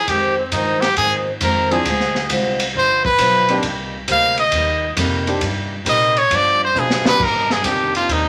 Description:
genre	jazz, big band swing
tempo	135 BPM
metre	4/4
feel	swing 67% on 8ths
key	C minor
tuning	A4 = 439 Hz
part	brilliant trumpet	melody	0.0-8.3 s	C4 to F5	-18 LUFS	equal	none
part	picked steel-string acoustic guitar	accompaniment	0.1-8.3 s	F2 to F4	-27 LUFS	equal	none
part	upright bass	bass	0.1-8.3 s	G1 to B2	-29 LUFS	equal	none
part	swinging big-band drum kit	drums	0.1-8.2 s	crash cymbal, hi-hat, kick drum, ride cymbal, snare drum	-25 LUFS	equal	none
part	warm grand piano	accompaniment	1.7-8.3 s	F3 to Ab4	-26 LUFS	equal	none
room	wet club reverb, RT60 0.6 s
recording	vinyl crackle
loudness	-17 LUFS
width	mono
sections	0.0-7.2 A section; 7.2-8.3 A section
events	trumpet solo 0.0-8.3; drum fill 6.8-7.2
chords	0.1 Fm7; 1.9 Dm7b5; 2.8 G7; 3.6 Cm7; 6.3 G7; 7.2 Cm9

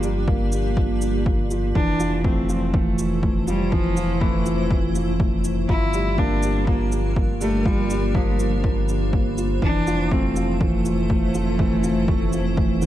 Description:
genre	piano and strings electronica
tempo	122 BPM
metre	4/4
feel	straight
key	unclear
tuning	A4 = 443 Hz
part	clear cello	melody	0.0-12.9 s	E3 to E4	-26 LUFS	left 1 dB	ping-pong delay
part	granular cloud pad	sustained chords	0.0-12.9 s	F3 to D5	-30 LUFS	equal	built-in reverb, sidechain pumping
part	felt-muted upright piano	riff	0.0-12.9 s	E3 to G4	-24 LUFS	right 2 dB	ping-pong delay
part	round analog bass	bass	0.0-12.9 s	F1 to G1	-25 LUFS	equal	sidechain pumping
part	shaker	drums	0.0-12.9 s	none	-37 LUFS	right 1 dB	overdrive
part	electronic kick drum	drums	0.3-12.7 s	none	-23 LUFS	equal	overdrive
room	light reverb, studio ambience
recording	dark, warm production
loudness	-19 LUFS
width	side -13 dB against mid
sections	0.0-12.9 A section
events	none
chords	0.0 Gm7; 1.8 Fmaj7; 5.7 Gm7; 9.6 Fmaj7

